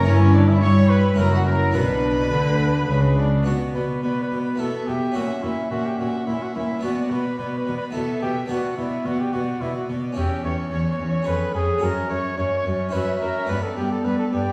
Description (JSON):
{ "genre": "classical, baroque-style concerto movement with solo episodes", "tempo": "108 BPM", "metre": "3/4", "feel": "straight", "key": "B minor", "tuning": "A4 = 440 Hz", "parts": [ { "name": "rich chamber violin section", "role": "melody", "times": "0.0-14.5 s", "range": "C#5 to C#6", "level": "-38 LUFS", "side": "equal", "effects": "none" }, { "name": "rich chamber violin section", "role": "second line", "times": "0.0-14.5 s", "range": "C#4 to E5", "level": "-33 LUFS", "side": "equal", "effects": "none" }, { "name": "dark chamber viola section", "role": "accompaniment", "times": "0.0-14.5 s", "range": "B3 to E4", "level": "-30 LUFS", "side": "equal", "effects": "none" }, { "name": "harpsichord", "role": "accompaniment", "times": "0.0-14.5 s", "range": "E2 to G#4", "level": "-31 LUFS", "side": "equal", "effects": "none" }, { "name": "rich chamber cello section", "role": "bass", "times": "0.0-14.4 s", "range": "E2 to G3", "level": "-27 LUFS", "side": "equal", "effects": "none" }, { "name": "rich chamber double bass section", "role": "bass", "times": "0.0-3.5 s", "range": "F#1 to G2", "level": "-23 LUFS", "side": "equal", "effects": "none" }, { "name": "warm trumpet", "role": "melody", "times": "0.1-14.5 s", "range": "C#4 to C#5", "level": "-30 LUFS", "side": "equal", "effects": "none" } ], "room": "wet recital hall reverb, RT60 1.3 s", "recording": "heard from further back in the room, small room ambience", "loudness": "-22 LUFS", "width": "mono", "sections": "0.0-3.5 A section; 3.5-14.5 B section", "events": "none", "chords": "0.1 Em/G; 1.2 F#7; 1.8 Bm; 4.6 Em/B; 5.2 F#7/A#; 6.8 Bm; 7.9 Em/B; 8.5 Bm; 10.2 Em6; 11.3 C#7/E#; 11.8 F#5; 12.9 F#7; 13.5 G" }